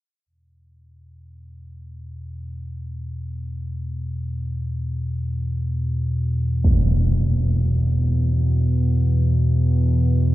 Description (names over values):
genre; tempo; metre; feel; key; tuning
dark ambient drone; free time; none; none; unclear; A4 = 440 Hz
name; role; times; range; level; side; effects
deep rumbling drone; drone; 1.5-10.3 s; E2 to B2; -20 LUFS; equal; built-in reverb
impact; percussion; 6.6-6.9 s; none; -24 LUFS; equal; low-pass filter on sfx
room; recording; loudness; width
wet cathedral reverb, RT60 6.9 s; none; -19 LUFS; side -16 dB against mid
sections
0.3-10.3 A section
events
none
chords
0.3 E5